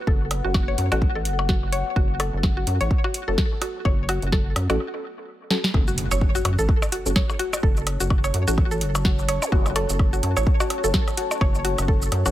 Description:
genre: minimal techno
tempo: 127 BPM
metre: 4/4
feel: swing 58% on 16ths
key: F# minor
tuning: A4 = 440 Hz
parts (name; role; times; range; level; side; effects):
- deep dark ambient pad; texture; 0.0-12.3 s; F#4 to A5; -32 LUFS; left 3 dB; chorus, built-in reverb, sidechain pumping
- mallet-like synth pluck; riff; 0.1-12.3 s; F#4 to C#5; -29 LUFS; equal; chorus, sidechain pumping, tape echo
- rubbery square bass; bass; 0.1-12.3 s; F#1 to F#2; -25 LUFS; equal; sidechain pumping
- electronic kick drum; drums; 0.1-12.0 s; none; -22 LUFS; equal; none
- booming analog drum machine; drums; 0.3-12.3 s; hi-hat, shaker, snare drum; -26 LUFS; right 1 dB; none
- percussion blips; percussion; 0.3-12.3 s; none; -30 LUFS; left 2 dB; dub echo
- filtered dub chord stab; stabs; 0.9-12.3 s; C#4 to A4; -32 LUFS; left 2 dB; phaser, dub echo
- impact and zap; sound effects; 5.7-9.5 s; none; -32 LUFS; equal; none
room: digital ambience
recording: echo-heavy mix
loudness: -20 LUFS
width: side -14 dB against mid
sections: 0.0-5.7 A section; 5.7-12.3 B section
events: filter sweep on synth stab 0.0-5.7; break 4.8-5.7; drum fill 5.5; drop 5.7-12.3; impact 5.7-7.6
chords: 0.0 F#m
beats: | 0.07 0.55 1.02 1.49 | 1.96 2.44 2.91 3.38 | 3.85 4.33 4.80 5.27 | 5.74 6.21 6.69 7.16 | 7.63 8.10 8.58 9.05 | 9.52 9.99 10.47 10.94 | 11.41 11.88

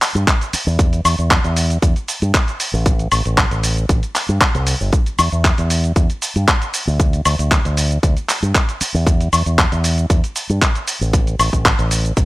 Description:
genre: nu-disco, nu disco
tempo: 116 BPM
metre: 4/4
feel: straight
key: E minor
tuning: A4 = 441 Hz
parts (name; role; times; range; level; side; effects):
- dusty soul sampler-style drum kit; drums; 0.0-12.2 s; cabasa, handclaps, hi-hat, woodblock; -18 LUFS; equal; none
- fingered electric bass with an envelope filter; bass; 0.1-12.2 s; G1 to G2; -17 LUFS; equal; none
- electronic kick drum; drums; 0.3-12.2 s; none; -16 LUFS; equal; none
room: little or no reverb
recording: dry, gritty hardware recording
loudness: -14 LUFS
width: side -19 dB against mid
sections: 0.0-12.2 A section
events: none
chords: none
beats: 0.27 | 0.79 1.31 1.82 2.34 | 2.86 3.38 3.89 4.41 | 4.93 5.45 5.96 6.48 | 7.00 7.51 8.03 8.55 | 9.06 9.58 10.10 10.62 | 11.13 11.65 12.17

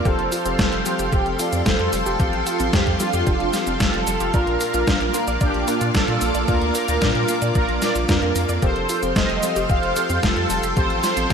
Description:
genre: italo disco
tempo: 112 BPM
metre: 4/4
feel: straight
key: Bb major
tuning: A4 = 440 Hz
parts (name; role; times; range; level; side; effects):
- mellow synth brass; melody; 0.0-11.3 s; C4 to F5; -23 LUFS; right 1 dB; chorus, phaser, digital delay
- string machine, full ensemble; sustained chords; 0.0-11.3 s; Bb3 to D6; -27 LUFS; equal; ensemble chorus
- wide unison pluck; arpeggios; 0.0-11.3 s; G3 to D5; -30 LUFS; right 2 dB; digital delay
- clear electric grand piano; stabs; 0.0-11.3 s; Bb2 to F5; -28 LUFS; left 2 dB; digital delay
- round analog bass; bass; 0.1-11.3 s; F1 to Bb2; -26 LUFS; equal; none
- detuned 8-bit digital drum machine; drums; 0.1-11.3 s; cabasa, hi-hat, snare drum; -26 LUFS; left 1 dB; overdrive, small room ambience, gated reverb
- electronic kick drum; drums; 0.1-11.3 s; none; -22 LUFS; equal; overdrive, small room ambience
room: moderate lush hall reverb, RT60 2.6 s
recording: bright 1980s-style digital production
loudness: -18 LUFS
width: side -6 dB against mid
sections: 0.0-11.3 A section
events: none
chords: 0.1 Fadd9; 4.3 Bb; 8.6 Fadd9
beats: | 0.05 0.59 1.12 1.66 | 2.20 2.73 3.27 3.80 | 4.34 4.88 5.41 5.95 | 6.48 7.02 7.55 8.09 | 8.62 9.16 9.70 10.23 | 10.77 11.30

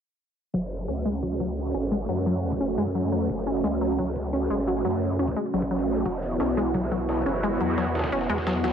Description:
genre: dark technical drum and bass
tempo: 174 BPM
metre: 4/4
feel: straight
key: F# minor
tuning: A4 = 440 Hz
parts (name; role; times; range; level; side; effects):
- sweeping resonant pad; sustained chords; 0.5-8.7 s; A3 to F#4; -27 LUFS; right 1 dB; chorus, sidechain pumping
- wide unison pluck; arpeggios; 0.5-8.7 s; F#3 to C#4; -28 LUFS; left 1 dB; sidechain pumping, dub echo
- growl bass; bass; 0.5-8.7 s; E1 to F#2; -29 LUFS; equal; chorus, tube saturation
- electronic hi-hat; drums; 0.5-8.7 s; none; -55 LUFS; left 2 dB; none
- electronic kick drum; drums; 0.5-8.5 s; none; -36 LUFS; right 1 dB; high-pass filter on kick, high-pass filter on room
- breakbeat sampler-style drum kit; drums; 6.1-8.7 s; hi-hat, ride cymbal, snare drum; -36 LUFS; equal; high-pass filter on cymbals, high-pass filter on hats, high-pass filter on snare
room: light reverb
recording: low-pass filter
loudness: -24 LUFS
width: side -8 dB against mid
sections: 0.5-8.7 A section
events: filter sweep on synth arpeggio sound 0.5-8.7; filter sweep 0.5-8.7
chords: 0.5 F#m; 6.1 Esus2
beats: | 0.54 0.88 1.23 1.57 | 1.92 2.26 2.61 2.95 | 3.29 3.64 3.98 4.33 | 4.67 5.02 5.36 5.71 | 6.05 6.40 6.74 7.09 | 7.43 7.78 8.12 8.47

